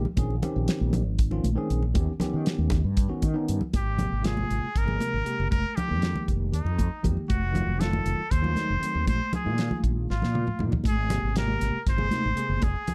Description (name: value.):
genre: electric jazz fusion.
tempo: 236 BPM (eighths).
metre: 7/8.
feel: straight.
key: unclear.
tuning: A4 = 441 Hz.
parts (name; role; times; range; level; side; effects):
bell-like tine electric piano; accompaniment; 0.0-12.6 s; C3 to Bb4; -34 LUFS; equal; none.
fretless electric bass; bass; 0.0-12.9 s; F1 to Eb3; -30 LUFS; equal; lush chorus.
congas; percussion; 0.1-12.9 s; none; -34 LUFS; equal; none.
damped 70s drum kit; drums; 0.2-12.9 s; hi-hat, kick drum, snare drum, toms; -30 LUFS; equal; none.
trumpet with straight mute; melody; 3.8-12.9 s; Eb4 to C5; -33 LUFS; equal; slapback echo.
room: light reverb.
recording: dark, warm production.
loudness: -26 LUFS.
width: mono.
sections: 0.0-3.7 A section; 3.7-12.9 B section.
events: drum fill 10.1-10.8.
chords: 0.2 Bbm11; 2.0 Eb7b13; 3.7 Abmaj9; 5.5 Fm11; 7.3 F7b9; 9.1 Bb7sus4; 10.8 Abmaj9.